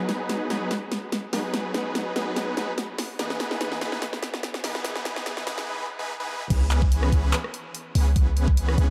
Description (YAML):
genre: future bass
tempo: 145 BPM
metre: 4/4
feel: swing 53% on 16ths, half-time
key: unclear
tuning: A4 = 440 Hz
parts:
  - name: supersaw chords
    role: riff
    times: 0.0-8.9 s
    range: E3 to B4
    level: -32 LUFS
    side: equal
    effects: sidechain pumping, low-pass filter, digital delay
  - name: dubstep drum kit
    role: drums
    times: 0.1-8.9 s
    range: crash cymbal, handclaps, hi-hat, rim click, snare drum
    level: -33 LUFS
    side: equal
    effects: overdrive
  - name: warm 808-style bass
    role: bass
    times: 6.5-8.9 s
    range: C#2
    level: -24 LUFS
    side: equal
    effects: sidechain pumping
  - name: electronic kick drum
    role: drums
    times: 6.5-8.6 s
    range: none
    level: -24 LUFS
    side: equal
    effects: overdrive
room: moderate huge ambient reverb, RT60 3.7 s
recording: dark, warm production, high-pass filter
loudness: -26 LUFS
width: mono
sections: 0.0-6.5 A section; 6.5-8.9 B section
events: build-up 0.0-6.5; drum fill 0.0-5.7; filter sweep on supersaw synth 0.0-6.5; filter sweep 0.0-6.5; drop 6.5-8.9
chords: 0.0 G#m7; 3.2 Emaj7; 6.5 C#m7